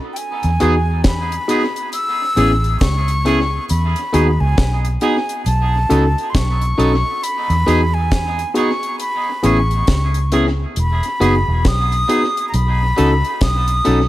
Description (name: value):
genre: lovers rock reggae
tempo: 68 BPM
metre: 4/4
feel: swing 61% on 16ths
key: E major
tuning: A4 = 439 Hz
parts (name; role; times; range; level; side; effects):
- breathy concert flute; melody; 0.1-14.1 s; G5 to E6; -21 LUFS; equal; tape echo
- deep reggae drum kit; drums; 0.2-14.1 s; hi-hat, kick drum, snare drum; -21 LUFS; equal; tape echo
- vintage muted fingered electric bass; bass; 0.4-14.1 s; E1 to E2; -17 LUFS; equal; none
- tine electric piano; accompaniment; 0.6-14.0 s; B3 to A4; -20 LUFS; left 1 dB; none
- twangy electric guitar; stabs; 0.6-14.0 s; A3 to A4; -25 LUFS; right 4 dB; tape echo
room: light reverb, small room reverb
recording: none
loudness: -14 LUFS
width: side -15 dB against mid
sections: 0.0-14.1 A section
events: none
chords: 0.2 Emaj7; 1.9 Amaj7; 3.7 Emaj7; 5.5 B7; 7.2 Emaj7; 9.0 Amaj7; 10.8 Emaj7; 12.5 B7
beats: | 0.16 1.05 1.93 2.81 | 3.70 4.58 5.46 6.35 | 7.23 8.12 9.00 9.88 | 10.76 11.65 12.53 13.41